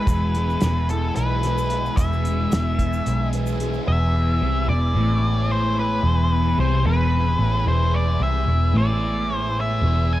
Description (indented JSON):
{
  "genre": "psychedelic rock",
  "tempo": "222 BPM (eighths)",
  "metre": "7/8",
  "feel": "straight",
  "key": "E major",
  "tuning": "A4 = 440 Hz",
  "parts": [
    { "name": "octave-fuzz lead guitar", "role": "melody", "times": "0.0-10.2 s", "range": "A4 to G#5", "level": "-25 LUFS", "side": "left 1 dB", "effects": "distortion, tape echo" },
    { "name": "combo organ", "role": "sustained chords", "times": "0.0-10.2 s", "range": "E3 to G#4", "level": "-33 LUFS", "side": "right 6 dB", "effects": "none" },
    { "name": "thick fuzz guitar", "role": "riff", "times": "0.0-10.2 s", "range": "E2 to B3", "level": "-24 LUFS", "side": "left 1 dB", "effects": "distortion, phaser, tape echo" },
    { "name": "vintage muted picked electric bass", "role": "bass", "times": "0.1-10.2 s", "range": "E1 to C2", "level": "-21 LUFS", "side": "equal", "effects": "none" },
    { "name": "cloth-damped thuddy drum kit", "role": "drums", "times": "0.1-3.7 s", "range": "hi-hat, kick drum, snare drum", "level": "-24 LUFS", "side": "equal", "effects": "none" },
    { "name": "egg shaker", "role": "percussion", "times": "0.1-3.8 s", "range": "none", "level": "-47 LUFS", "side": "left 9 dB", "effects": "none" }
  ],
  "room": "light reverb",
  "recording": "echo-heavy mix",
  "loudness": "-18 LUFS",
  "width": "side -14 dB against mid",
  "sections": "0.0-3.9 A section; 3.9-10.2 B section",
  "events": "none",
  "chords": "0.0 E",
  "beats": "| 0.08 0.35 0.62 0.89 1.16 1.43 1.71 | 1.98 2.25 2.52 2.79 3.06 3.33 3.60 | 3.87 4.14 4.41 4.68 4.96 5.22 5.50 | 5.77 6.04 6.31 6.58 6.85 7.12 7.39 | 7.66 7.93 8.20 8.47 8.74 9.01 9.28 | 9.55 9.82 10.09"
}